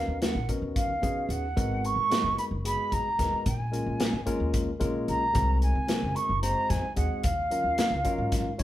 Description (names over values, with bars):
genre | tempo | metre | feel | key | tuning
electric jazz fusion | 222 BPM (eighths) | 7/8 | straight | unclear | A4 = 438 Hz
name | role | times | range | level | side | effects
mellow concert flute | melody | 0.0-8.6 s | F5 to Db6 | -29 LUFS | right 2 dB | none
barky tine electric piano | accompaniment | 0.0-8.6 s | Gb3 to Db5 | -33 LUFS | left 2 dB | none
upright bass | bass | 0.0-8.6 s | Gb1 to D#3 | -31 LUFS | equal | none
modern studio drum kit | drums | 0.2-8.6 s | hi-hat, kick drum, snare drum | -31 LUFS | equal | none
room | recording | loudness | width
moderate large studio reverb, RT60 0.9 s | band playing live in one room | -25 LUFS | side -13 dB against mid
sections
0.0-8.6 A section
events
none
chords
0.0 Bmaj9; 1.6 Abm9; 3.5 Bbm7; 5.3 Ab7; 7.2 Ebm9